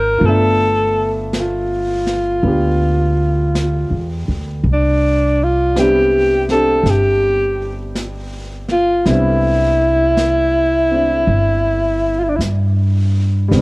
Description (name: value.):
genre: jazz ballad.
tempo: 54 BPM.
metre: 4/4.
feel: swing 66% on 8ths.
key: C major.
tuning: A4 = 441 Hz.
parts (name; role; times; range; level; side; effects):
clear alto saxophone; melody; 0.0-12.4 s; D4 to Bb4; -15 LUFS; equal; none.
clear upright piano; accompaniment; 0.0-13.6 s; F3 to E5; -22 LUFS; equal; cassette tape.
upright bass; bass; 0.0-13.6 s; G1 to G2; -18 LUFS; equal; none.
jazz brush drum kit; drums; 0.2-13.6 s; brushed snare drum, hi-hat, snare drum; -27 LUFS; equal; cassette tape.
room: light reverb, studio reverb.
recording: home recording on cassette.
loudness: -13 LUFS.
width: side -23 dB against mid.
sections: 0.0-13.5 A section.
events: none.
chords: 0.2 G13; 4.6 Cmaj9.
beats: | 0.22 1.33 2.44 3.55 | 4.65 5.75 6.85 7.95 | 9.06 10.17 11.28 12.40 | 13.52.